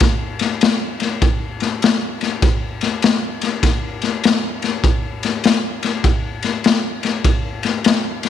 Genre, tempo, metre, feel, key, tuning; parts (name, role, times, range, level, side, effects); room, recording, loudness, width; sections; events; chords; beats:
blues; 100 BPM; 4/4; swing 64% on 8ths
raw garage drum kit; drums; 0.0-8.3 s; kick drum, ride cymbal, snare drum; -16 LUFS; left 2 dB
moderate echo chamber reverb, RT60 2.0 s; 1960s-style stereo; -16 LUFS; side -10 dB against mid
0.0-8.3 A section
| 0.02 0.62 1.22 1.82 | 2.43 3.03 3.63 4.23 | 4.83 5.44 6.04 6.64 | 7.25 7.85